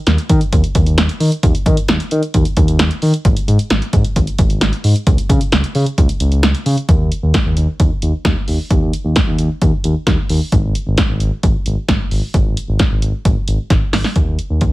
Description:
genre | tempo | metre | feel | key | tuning
synth-pop | 132 BPM | 4/4 | straight | unclear | A4 = 440 Hz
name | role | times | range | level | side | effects
smooth synth bass | bass | 0.1-14.7 s | Ab1 to Eb3 | -15 LUFS | equal | none
punchy analog drum machine | drums | 0.1-14.7 s | hi-hat, kick drum, snare drum | -15 LUFS | equal | none
room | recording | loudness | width
light reverb | heavily compressed radio sound, multiband compression | -13 LUFS | side -18 dB against mid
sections
0.0-6.9 A section; 6.9-14.2 B section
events
drum fill 13.7-14.2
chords
none

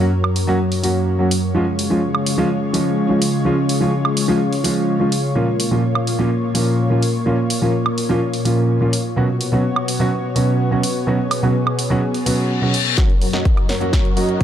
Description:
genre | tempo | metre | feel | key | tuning
EDM, festival progressive house | 126 BPM | 4/4 | straight | F# major | A4 = 440 Hz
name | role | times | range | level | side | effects
dark grand piano | accompaniment | 0.0-14.4 s | A#2 to F#4 | -19 LUFS | right 1 dB | sidechain pumping, ping-pong delay
lush unison pad | sustained chords | 0.0-14.4 s | F#2 to C#5 | -20 LUFS | left 1 dB | chorus, sidechain pumping
big-room dance drum kit | drums | 0.2-14.4 s | hi-hat, snare drum, woodblock | -25 LUFS | right 2 dB | none
reverse cymbal and riser | sound effects | 12.3-14.4 s | none | -24 LUFS | left 9 dB | none
dense compressed supersaw | riff | 13.0-14.4 s | F#4 to D#5 | -24 LUFS | equal | sidechain pumping, low-pass filter
electronic kick drum | drums | 13.0-14.4 s | none | -16 LUFS | equal | none
room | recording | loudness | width
light reverb, digital ambience | dark, warm production | -16 LUFS | side -10 dB against mid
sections
0.0-13.0 A section; 13.0-14.4 B section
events
reverse cymbal 12.3-13.0; build-up 13.0-14.4; drum fill 13.0-14.4; filter sweep on supersaw synth 13.0-14.4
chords
0.0 F#; 1.5 C#; 5.4 A#m; 9.2 Bsus2; 13.0 F#

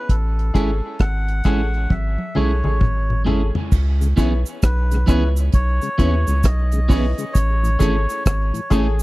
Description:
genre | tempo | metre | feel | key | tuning
dub reggae | 66 BPM | 4/4 | swing 63% on 16ths | C# minor | A4 = 440 Hz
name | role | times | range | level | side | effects
melodica | melody | 0.0-9.0 s | G#4 to F#5 | -28 LUFS | equal | dub echo
soft dub sub bass | bass | 0.1-9.0 s | G#1 to D#2 | -19 LUFS | equal | none
deep reggae drum kit | drums | 0.1-9.0 s | crash cymbal, hi-hat, kick drum, rim click, toms | -18 LUFS | equal | none
electric guitar at the edge of break-up | accompaniment | 0.5-8.9 s | E3 to G#4 | -25 LUFS | right 3 dB | spring reverb, dub echo
clear upright piano | stabs | 0.5-8.9 s | E4 to C#5 | -29 LUFS | left 4 dB | dub echo
cabasa | percussion | 3.7-9.0 s | none | -38 LUFS | right 6 dB | none
mellow tonewheel organ | accompaniment | 4.0-8.8 s | A2 to G#4 | -30 LUFS | left 3 dB | none
room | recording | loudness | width
little or no reverb | dry, close 1970s-style studio recording | -16 LUFS | side -19 dB against mid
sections
0.0-3.7 A section; 3.7-9.0 B section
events
drum fill 1.9-3.7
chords
0.1 Amaj7; 3.7 C#m7; 7.3 Amaj7

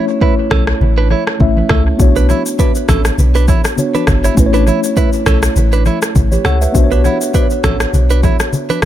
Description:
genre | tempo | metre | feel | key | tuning
afrobeats | 101 BPM | 4/4 | swing 55% on 16ths | B minor | A4 = 440 Hz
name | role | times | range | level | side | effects
mellow tine electric piano | accompaniment | 0.0-8.9 s | A3 to F#5 | -17 LUFS | left 1 dB | medium stereo tremolo, analog delay
direct-recorded clean electric guitar | riff | 0.0-8.8 s | C#4 to C#5 | -20 LUFS | right 8 dB | analog delay
afro-pop drum kit | drums | 0.2-8.9 s | kick drum, rim click, shaker | -15 LUFS | equal | analog delay
punchy sub bass | bass | 0.5-8.9 s | G1 to C#2 | -13 LUFS | equal | none
congas | percussion | 0.5-8.9 s | none | -22 LUFS | left 3 dB | analog delay
room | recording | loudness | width
digital ambience | echo-heavy mix | -10 LUFS | side -12 dB against mid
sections
0.0-8.9 A section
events
break 0.0-2.0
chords
0.0 A; 2.0 Bmadd9; 4.4 A; 6.7 Bmadd9

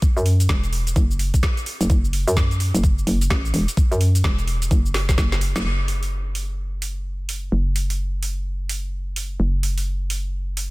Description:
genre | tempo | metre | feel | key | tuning
bass house | 128 BPM | 4/4 | swing 62% on 16ths | unclear | A4 = 440 Hz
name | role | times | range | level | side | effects
electronic kick drum | drums | 0.0-5.3 s | none | -18 LUFS | equal | overdrive, small room ambience
garage drum kit | drums | 0.0-10.7 s | hi-hat, shaker, snare drum | -27 LUFS | right 1 dB | overdrive, small room ambience
hollow knocking FM bass | bass | 0.2-10.7 s | E1 to F#2 | -21 LUFS | equal | tube saturation, sidechain pumping
room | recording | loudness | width
little or no reverb | dense, heavily limited modern master | -19 LUFS | side -22 dB against mid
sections
0.0-5.6 A section; 5.6-10.7 B section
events
drum fill 4.9-5.6; band accent 5.5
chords
none

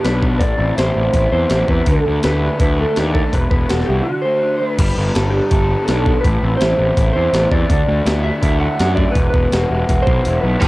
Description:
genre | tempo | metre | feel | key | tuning
indie rock | 165 BPM | 4/4 | straight | G major | A4 = 440 Hz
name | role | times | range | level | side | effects
electric guitar through a small old amp | melody | 0.0-10.7 s | F#4 to F#5 | -20 LUFS | right 1 dB | analog chorus
raw garage guitar | riff | 0.0-10.7 s | E2 to A4 | -23 LUFS | left 2 dB | overdrive, cassette tape
fuzz picked electric bass | bass | 0.0-10.7 s | E1 to F#2 | -18 LUFS | equal | overdrive
breakbeat sampler-style drum kit | drums | 0.0-10.7 s | crash cymbal, hi-hat, kick drum, snare drum | -18 LUFS | equal | cassette tape
raw garage guitar | riff | 10.6-10.7 s | G2 to G4 | -17 LUFS | right 2 dB | overdrive, analog chorus, cassette tape
room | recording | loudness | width
little or no reverb | home recording on cassette | -14 LUFS | side -19 dB against mid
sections
0.0-4.8 A section; 4.8-10.7 A section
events
kick and snare drop out 10.2-10.6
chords
0.4 Amadd9; 1.9 Dsus2; 3.3 Esus2; 4.1 D; 4.8 Gadd9; 6.2 Amadd9; 7.7 Dadd9; 9.2 Esus2

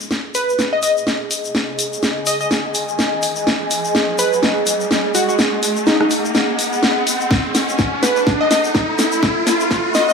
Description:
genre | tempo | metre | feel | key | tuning
bass house | 125 BPM | 4/4 | swing 58% on 16ths | G# phrygian | A4 = 440 Hz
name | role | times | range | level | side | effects
egg shaker | percussion | 0.0-10.1 s | none | -26 LUFS | left 6 dB | none
riser | sound effects | 0.0-10.1 s | none | -23 LUFS | left 1 dB | none
ethereal airy pad | texture | 0.7-10.1 s | G#4 to B5 | -22 LUFS | right 1 dB | ensemble chorus, built-in reverb, sidechain pumping
garage drum kit | drums | 0.1-10.1 s | hi-hat, rim click, snare drum | -19 LUFS | equal | studio reverb
plucky unison lead | melody | 0.3-10.1 s | D#4 to D#5 | -19 LUFS | left 1 dB | digital delay
electronic kick drum | drums | 7.3-9.8 s | none | -21 LUFS | equal | studio reverb
room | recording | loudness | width
wet lush hall reverb, RT60 1.9 s, digital ambience | high-pass filter, small room ambience | -15 LUFS | side -5 dB against mid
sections
0.0-10.1 A section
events
build-up 0.0-10.1; drum fill 0.0-10.1; riser 0.0-10.1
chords
0.0 G#5; 7.3 A5

